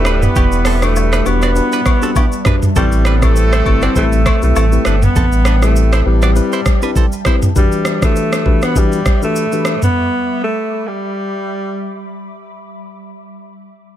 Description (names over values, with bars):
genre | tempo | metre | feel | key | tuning
afrobeats | 100 BPM | 4/4 | swing 55% on 16ths | E minor | A4 = 440 Hz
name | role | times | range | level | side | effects
breathy alto saxophone | melody | 0.0-12.1 s | G3 to C4 | -18 LUFS | right 1 dB | tape echo
mellow horn section | second line | 0.0-4.8 s | C4 to B4 | -24 LUFS | right 1 dB | none
tine electric piano | accompaniment | 0.0-9.7 s | E3 to B4 | -20 LUFS | left 6 dB | none
ethereal airy pad | sustained chords | 0.0-12.3 s | G3 to D6 | -26 LUFS | equal | ensemble chorus, built-in reverb
sub bass with octave | bass | 0.0-6.4 s | D1 to B1 | -14 LUFS | equal | none
afro-pop drum kit | drums | 0.0-9.9 s | hi-hat, kick drum, rim click, shaker, toms | -15 LUFS | equal | none
direct-recorded clean electric guitar | riff | 0.1-7.4 s | B3 to D5 | -23 LUFS | right 7 dB | tape echo
agogo bells and woodblock | percussion | 0.4-4.7 s | none | -26 LUFS | left 10 dB | none
room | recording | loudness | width
little or no reverb | none | -12 LUFS | side -12 dB against mid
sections
0.0-12.4 A section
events
none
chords
0.0 Em7; 2.8 Am7; 7.6 Em7